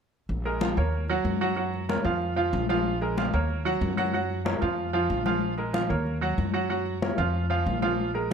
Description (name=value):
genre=latin, salsa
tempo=187 BPM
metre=4/4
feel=straight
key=Bb minor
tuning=A4 = 439 Hz
part: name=upright bass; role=bass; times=0.3-8.3 s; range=Bb1 to Gb2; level=-30 LUFS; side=equal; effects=none
part: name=congas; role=percussion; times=0.3-8.3 s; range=none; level=-31 LUFS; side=left 5 dB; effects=none
part: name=bright upright piano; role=accompaniment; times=0.5-8.3 s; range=F3 to Gb5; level=-27 LUFS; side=right 3 dB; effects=none
room=moderate studio reverb, RT60 0.8 s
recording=dark, warm production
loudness=-24 LUFS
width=side -6 dB against mid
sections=0.3-8.3 A section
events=none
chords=0.3 Bbm7; 0.9 Ebm7; 1.6 Gbmaj7; 2.2 Bb5; 2.9 Bbm7; 3.5 Ebm7; 4.1 Gbmaj7; 4.8 Bb5; 5.4 Bbm7; 6.1 Ebm7; 6.7 Gbmaj7; 7.3 Bb5